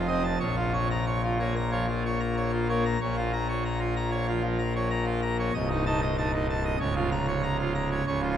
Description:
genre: classical, organ toccata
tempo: 95 BPM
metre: 4/4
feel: straight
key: Bb minor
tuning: A4 = 441 Hz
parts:
  - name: pipe organ, full organ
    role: solo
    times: 0.0-8.4 s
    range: C1 to Bb5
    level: -25 LUFS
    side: equal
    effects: none
room: wet cathedral reverb, RT60 4.6 s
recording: none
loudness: -25 LUFS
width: side -10 dB against mid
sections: 0.0-3.0 A section; 3.0-8.4 B section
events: none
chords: 0.4 Bbm; 5.5 Adim/C; 6.8 Bbm/Db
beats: | 0.41 1.07 1.72 2.37 | 3.01 3.65 4.28 4.91 | 5.54 6.17 6.80 7.43 | 8.06

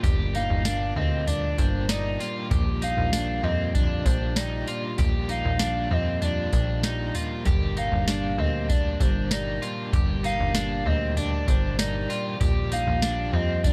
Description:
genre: dream pop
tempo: 97 BPM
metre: 4/4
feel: straight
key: unclear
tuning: A4 = 440 Hz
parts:
  - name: crunchy overdriven guitar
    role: accompaniment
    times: 0.0-13.7 s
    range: G2 to G4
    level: -38 LUFS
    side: equal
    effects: tremolo, lush chorus
  - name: mellow tonewheel organ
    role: sustained chords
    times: 0.0-13.7 s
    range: Bb2 to Bb4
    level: -37 LUFS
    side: equal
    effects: slow rotary speaker
  - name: electric guitar at the edge of break-up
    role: arpeggios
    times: 0.0-13.7 s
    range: C4 to G4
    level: -35 LUFS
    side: equal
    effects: subtle chorus, delay
  - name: plucky analog bass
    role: bass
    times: 0.0-13.7 s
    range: G1 to F2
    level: -30 LUFS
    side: equal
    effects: none
  - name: soft vintage rhythm box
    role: drums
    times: 0.0-13.7 s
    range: kick drum, snare drum, tambourine, toms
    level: -28 LUFS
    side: equal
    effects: none
  - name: hollow clarinet-like synth lead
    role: melody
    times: 0.4-13.7 s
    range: C5 to F5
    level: -34 LUFS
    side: equal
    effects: chorus, delay
room: little or no reverb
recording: none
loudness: -25 LUFS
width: mono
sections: 0.0-13.7 A section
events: none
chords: 0.0 Gm; 2.5 Bb6; 7.5 Gm; 12.4 Bb6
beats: | 0.03 0.65 1.27 1.89 | 2.51 3.13 3.75 4.36 | 4.98 5.60 6.22 6.84 | 7.46 8.07 8.69 9.31 | 9.93 10.55 11.17 11.79 | 12.40 13.02 13.64

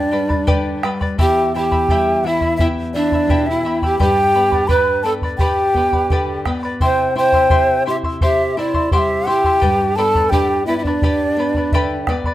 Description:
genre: andean folk, Andean ensemble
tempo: 85 BPM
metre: 4/4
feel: straight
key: unclear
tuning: A4 = 440 Hz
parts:
  - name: breathy large quena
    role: melody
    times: 0.0-12.1 s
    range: D5 to B5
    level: -19 LUFS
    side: left 1 dB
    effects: plate reverb
  - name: polished pan flute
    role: second line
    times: 0.0-12.1 s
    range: D4 to C5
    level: -19 LUFS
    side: right 2 dB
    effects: plate reverb
  - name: charango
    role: accompaniment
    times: 0.0-12.3 s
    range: E4 to C6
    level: -23 LUFS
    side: left 2 dB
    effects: plate reverb
  - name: nylon-string guitar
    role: accompaniment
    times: 0.0-12.3 s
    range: E2 to E5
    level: -25 LUFS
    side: left 2 dB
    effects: none
  - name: bombo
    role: percussion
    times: 0.3-12.3 s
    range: none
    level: -20 LUFS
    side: equal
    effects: none
room: light reverb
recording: rough home demo mix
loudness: -14 LUFS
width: side -14 dB against mid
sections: 0.0-12.3 A section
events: nylon-string guitar fill 11.4-12.3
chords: 0.0 G; 1.2 Em; 4.0 G; 6.8 C; 9.6 G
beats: 0.48 | 1.18 1.88 2.59 3.29 | 4.00 4.70 5.40 6.11 | 6.81 7.51 8.21 8.92 | 9.62 10.32 11.03 11.73

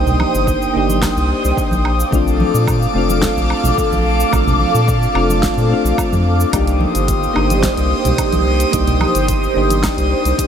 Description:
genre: sunset chillout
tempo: 109 BPM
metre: 4/4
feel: straight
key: C dorian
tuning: A4 = 441 Hz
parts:
  - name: soft electric-piano-like synth keys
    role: accompaniment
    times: 0.0-10.5 s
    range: A3 to G4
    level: -20 LUFS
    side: moving between left 5 dB and right 6 dB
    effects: chorus, auto-pan, tape echo
  - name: airy breathy pad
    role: sustained chords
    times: 0.0-10.5 s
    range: G4 to Eb6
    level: -18 LUFS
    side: equal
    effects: chorus, phaser
  - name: round analog bass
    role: bass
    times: 0.0-10.3 s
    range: F1 to Bb2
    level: -17 LUFS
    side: equal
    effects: none
  - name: deep house drum kit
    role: drums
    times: 0.1-10.5 s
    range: cabasa, hi-hat, snare drum, woodblock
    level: -25 LUFS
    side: right 1 dB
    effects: studio ambience
  - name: congas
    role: percussion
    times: 0.1-9.8 s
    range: none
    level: -26 LUFS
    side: right 1 dB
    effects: none
  - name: electronic kick drum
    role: drums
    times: 0.5-10.5 s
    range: none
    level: -23 LUFS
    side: equal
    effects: studio ambience
room: moderate huge ambient reverb, RT60 7.2 s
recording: dreamy mix soaked in reverb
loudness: -13 LUFS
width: side -8 dB against mid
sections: 0.0-10.5 A section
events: none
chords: 0.0 Cm7; 1.9 Bbmaj7; 6.5 Cm7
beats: 0.48 1.03 1.58 | 2.13 2.68 3.23 3.78 | 4.33 4.88 5.43 5.98 | 6.53 7.08 7.63 8.18 | 8.73 9.29 9.84 10.39

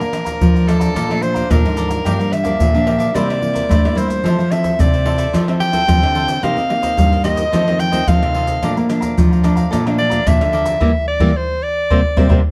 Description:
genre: samba and choro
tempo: 110 BPM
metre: 4/4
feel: straight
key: unclear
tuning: A4 = 440 Hz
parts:
  - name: bright soprano saxophone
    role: melody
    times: 0.0-12.5 s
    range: A4 to G5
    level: -21 LUFS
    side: equal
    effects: none
  - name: cavaquinho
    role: accompaniment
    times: 0.0-12.4 s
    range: Eb4 to Bb5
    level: -29 LUFS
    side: equal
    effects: none
  - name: nylon-string guitar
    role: accompaniment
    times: 0.0-12.4 s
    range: F2 to A4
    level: -24 LUFS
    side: equal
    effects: none
  - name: nylon-string guitar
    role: bass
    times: 0.0-12.4 s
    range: G2 to C4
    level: -21 LUFS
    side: equal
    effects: none
  - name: maracas, pandeiro, tamborim and surdo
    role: percussion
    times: 0.0-12.4 s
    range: none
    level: -21 LUFS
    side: equal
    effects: none
room: light reverb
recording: dark, warm production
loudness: -16 LUFS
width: mono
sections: 0.0-12.5 A section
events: soprano saxophone solo 0.0-12.5; band accent 10.8-12.5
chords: 0.0 Bbmaj7; 2.1 Gm7; 3.2 C7; 4.2 Fmaj7; 6.4 Cm7; 7.5 F7; 8.6 Bbmaj7; 10.8 Em7b5; 11.9 C9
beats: 0.41 0.96 1.51 | 2.06 2.60 3.15 3.70 | 4.25 4.80 5.34 5.89 | 6.44 6.99 7.53 8.08 | 8.63 9.18 9.72 10.27 | 10.82 11.37 11.91

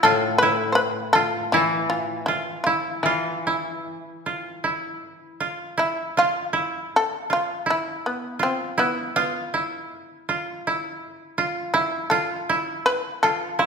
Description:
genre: japanese traditional, Japanese chamber music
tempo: 80 BPM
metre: 4/4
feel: rubato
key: E miyako bushi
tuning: A4 = 440 Hz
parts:
  - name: shamisen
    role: melody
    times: 0.0-13.7 s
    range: B3 to C5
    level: -23 LUFS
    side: left 1 dB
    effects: none
  - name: koto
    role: second line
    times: 0.0-13.7 s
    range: E4 to F4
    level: -24 LUFS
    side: right 3 dB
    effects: none
  - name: koto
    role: accompaniment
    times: 0.0-5.4 s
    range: A2 to E3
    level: -28 LUFS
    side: left 4 dB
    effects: none
room: wet recital hall reverb, RT60 1.7 s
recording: recorded in a church or concert hall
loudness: -21 LUFS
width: side -6 dB against mid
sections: 0.0-4.6 A section; 4.6-13.7 B section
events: none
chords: none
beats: 0.04 0.78 | 1.54 2.29 3.05 3.85 | 4.63 5.40 6.17 6.93 | 7.69 8.43 9.18 9.93 | 10.67 11.39 12.12 12.86 | 13.60

